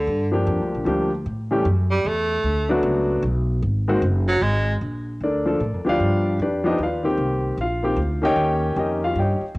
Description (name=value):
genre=jazz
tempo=152 BPM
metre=3/4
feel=swing 64% on 8ths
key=Bb major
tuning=A4 = 438 Hz
part: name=warm baritone saxophone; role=second line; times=0.0-4.7 s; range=D3 to A3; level=-23 LUFS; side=right 1 dB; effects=cassette tape
part: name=upright bass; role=bass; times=0.0-9.6 s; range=Gb1 to A2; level=-24 LUFS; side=equal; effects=none
part: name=warm grand piano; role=accompaniment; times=0.3-9.4 s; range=Eb3 to G5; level=-21 LUFS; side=left 1 dB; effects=cassette tape
room=light reverb, studio reverb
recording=home recording on cassette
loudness=-19 LUFS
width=side -22 dB against mid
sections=0.0-4.8 A section; 4.8-9.6 A section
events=baritone saxophone solo 0.0-4.8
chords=0.1 Gm7; 1.3 A7(no3); 2.4 D6; 3.6 Ab7(no3); 4.8 Bbmaj7; 6.0 G7; 7.2 Cm7; 8.4 Eb7